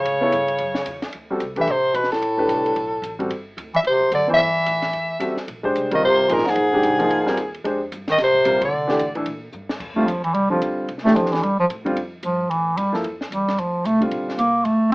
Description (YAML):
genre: modal jazz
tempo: 222 BPM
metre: 4/4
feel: swing 60% on 8ths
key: F major from 9.8 s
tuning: A4 = 441 Hz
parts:
  - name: growling soprano saxophone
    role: melody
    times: 0.0-9.1 s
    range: Ab4 to E5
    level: -19 LUFS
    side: equal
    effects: none
  - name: warm bass clarinet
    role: second line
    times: 0.0-14.9 s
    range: Ab2 to Bb3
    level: -20 LUFS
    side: right 1 dB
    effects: none
  - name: upright bass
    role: bass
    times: 0.0-14.9 s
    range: G1 to C3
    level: -40 LUFS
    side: equal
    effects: none
  - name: compact cocktail drum kit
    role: drums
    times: 0.1-14.9 s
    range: crash cymbal, hi-hat, kick drum, ride cymbal, snare drum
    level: -34 LUFS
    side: equal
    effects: none
  - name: warm concert grand piano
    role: accompaniment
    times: 0.2-14.4 s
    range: D3 to C#5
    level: -23 LUFS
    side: equal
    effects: none
room: moderate studio reverb, RT60 0.5 s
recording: rough home demo mix, AM radio sound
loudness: -18 LUFS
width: side -26 dB against mid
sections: 0.0-1.1 A section; 1.1-9.8 B section; 9.8-14.9 C section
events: band accent 8.6; drum fill 9.5; bass clarinet solo 9.8-14.9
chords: 0.1 A7; 1.1 D9sus4; 5.5 Bb9sus4; 8.7 C9; 9.8 Fmaj9; 14.1 Bbmaj9